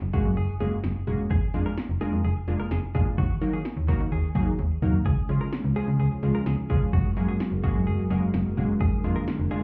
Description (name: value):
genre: synth-pop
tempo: 128 BPM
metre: 4/4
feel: straight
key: unclear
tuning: A4 = 440 Hz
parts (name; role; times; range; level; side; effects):
- slap-like FM bass; bass; 0.0-9.5 s; F1 to Eb3; -28 LUFS; equal; none
- direct-recorded clean electric guitar; second line; 0.1-9.6 s; Gb4 to Bb4; -41 LUFS; equal; digital delay
- funky polysynth comp; accompaniment; 0.1-9.6 s; F3 to Bb4; -33 LUFS; equal; chorus
- punchy analog drum machine; drums; 0.1-9.6 s; cowbell, hi-hat, kick drum, snare drum, toms; -30 LUFS; equal; none
- lush unison pad; sustained chords; 5.1-9.6 s; D3 to Db4; -32 LUFS; equal; chorus
room: light reverb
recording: heard muffled through a wall, club reverb, EQ, faint mains hum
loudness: -26 LUFS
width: mono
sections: 0.0-9.6 A section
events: drum fill 4.6-5.1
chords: 0.0 Gbadd9; 1.3 Bb7/F; 3.2 Ebm; 5.1 Db; 6.9 Gbadd9; 8.8 Bb7/F